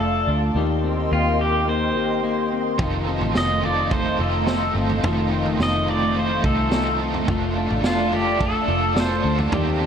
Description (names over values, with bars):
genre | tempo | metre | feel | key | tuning
dream pop | 107 BPM | 4/4 | straight | F mixolydian | A4 = 440 Hz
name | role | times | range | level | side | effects
pedal steel guitar | melody | 0.0-9.4 s | F4 to Eb5 | -25 LUFS | equal | tape echo
hollow soft pad | sustained chords | 0.0-9.9 s | A3 to C6 | -26 LUFS | right 2 dB | ensemble chorus
electric guitar at the edge of break-up | arpeggios | 0.0-9.9 s | Eb3 to G4 | -25 LUFS | left 4 dB | lush chorus, tape echo
vintage muted fingered electric bass | bass | 0.0-9.9 s | F1 to Eb2 | -26 LUFS | right 1 dB | none
overdriven electric guitar | accompaniment | 2.8-9.9 s | Eb3 to A4 | -29 LUFS | right 3 dB | tremolo, analog chorus
vintage drum kit | drums | 2.8-9.7 s | kick drum, snare drum, toms | -26 LUFS | right 1 dB | none
room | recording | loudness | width
moderate shimmer reverb, RT60 4.2 s | none | -19 LUFS | side -7 dB against mid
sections
0.0-9.9 A section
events
none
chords
0.0 F6; 0.5 Eb6; 2.8 F7; 7.3 Bbmaj7/F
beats
| 0.55 1.11 1.67 2.23 | 2.79 3.35 3.91 4.47 | 5.04 5.60 6.16 6.72 | 7.28 7.84 8.40 8.96 | 9.52